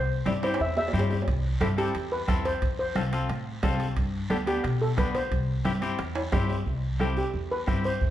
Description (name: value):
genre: latin, cumbia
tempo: 178 BPM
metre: 4/4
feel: straight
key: C major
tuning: A4 = 440 Hz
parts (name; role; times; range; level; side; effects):
- steel pan; melody; 0.0-8.1 s; G4 to E5; -30 LUFS; right 1 dB; none
- upright bass; bass; 0.0-8.1 s; C2 to B2; -29 LUFS; left 1 dB; none
- semi-hollow electric guitar; accompaniment; 0.3-7.9 s; B3 to A4; -33 LUFS; left 3 dB; none
- congas; percussion; 0.3-8.1 s; none; -34 LUFS; equal; none
- guiro; percussion; 0.3-8.1 s; none; -45 LUFS; right 2 dB; none
- timbales; percussion; 0.3-6.6 s; none; -36 LUFS; right 2 dB; none
- bombo; percussion; 1.3-8.1 s; none; -31 LUFS; right 1 dB; none
room: moderate large studio reverb, RT60 1.1 s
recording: heard from further back in the room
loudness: -25 LUFS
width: side -12 dB against mid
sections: 0.0-6.7 A section; 6.7-8.1 B section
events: drum fill 0.4-1.3, 6.2-6.7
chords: 0.0 C; 2.6 F; 4.0 G; 5.3 C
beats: 0.26 0.60 0.94 | 1.27 1.61 1.94 2.28 | 2.62 2.95 3.29 3.63 | 3.96 4.30 4.64 4.97 | 5.31 5.65 5.99 6.32 | 6.66 7.00 7.34 7.67 | 8.01